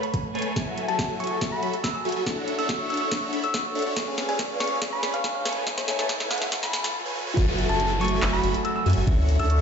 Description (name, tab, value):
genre	future bass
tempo	141 BPM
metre	4/4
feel	half-time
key	F# minor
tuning	A4 = 439 Hz
part	thumb-piano-like synth pluck	melody	0.0-9.6 s	C#5 to E6	-30 LUFS	equal	chorus, sidechain pumping, dub echo
part	clean electric guitar	accompaniment	0.0-0.5, 7.4-9.6 s	D3 to G#5	-33 LUFS	right 5 dB	spring reverb, sidechain pumping, dub echo
part	supersaw chords	riff	0.0-9.6 s	F#3 to B5	-29 LUFS	equal	phaser, sidechain pumping, low-pass filter
part	trap drum kit	drums	0.0-9.6 s	crash cymbal, handclaps, hi-hat, snare drum	-30 LUFS	equal	none
part	electronic kick drum	drums	0.1-9.2 s	none	-27 LUFS	equal	none
part	Celtic harp	arpeggios	0.6-9.6 s	E4 to C#5	-33 LUFS	left 2 dB	sidechain pumping, dub echo
part	riser and downlifter	sound effects	2.5-9.6 s	none	-34 LUFS	equal	none
part	saturated sub bass	bass	7.4-9.6 s	F#1 to F#2	-23 LUFS	equal	sidechain pumping
room	light reverb, digital ambience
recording	played on a big sound system in a bare room, stone room reverb, high-pass filter, nothing above 7.8 kHz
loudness	-23 LUFS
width	side -7 dB against mid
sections	0.0-7.4 A section; 7.4-9.6 B section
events	build-up 0.0-7.4; filter sweep on supersaw synth 0.0-7.4; filter sweep 0.0-7.4; drum fill 0.6-6.9; riser 2.5-7.4; break 6.9-7.4; drop 7.4-9.6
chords	0.0 Amaj9; 0.6 F#m9; 2.3 Dmaj9; 4.0 C#7b9; 5.5 Amaj9; 7.4 F#m9; 9.1 Dmaj9